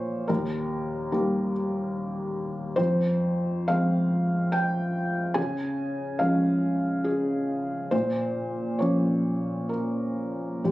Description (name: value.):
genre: neoclassical minimalist piano.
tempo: 61-73 BPM.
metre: 3/4.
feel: rubato.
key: unclear.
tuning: A4 = 440 Hz.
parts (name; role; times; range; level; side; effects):
felt-muted upright piano; solo; 0.0-10.7 s; Eb2 to Ab5; -24 LUFS; equal; none.
room: light reverb.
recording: recorded on a phone in the room, club reverb, compression.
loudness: -24 LUFS.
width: side -17 dB against mid.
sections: 0.0-10.7 A section.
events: none.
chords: 0.3 Eb; 2.8 Fm; 5.4 Db; 7.9 Bbm.